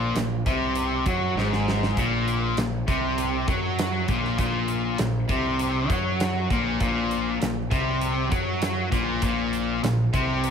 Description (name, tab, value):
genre	classic rock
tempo	99 BPM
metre	4/4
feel	straight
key	unclear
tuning	A4 = 438 Hz
part	overdriven electric guitar	riff	0.0-10.5 s	Ab2 to Gb3	-24 LUFS	left 1 dB	none
part	growling picked electric bass	bass	0.0-10.5 s	Ab1 to Gb2	-30 LUFS	equal	overdrive
part	big rock drum kit	drums	0.2-10.5 s	hi-hat, kick drum, snare drum	-29 LUFS	right 1 dB	none
room	light reverb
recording	none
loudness	-22 LUFS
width	side -7 dB against mid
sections	0.0-10.5 A section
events	drum fill 1.4-2.0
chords	0.0 Ab9 (rootless)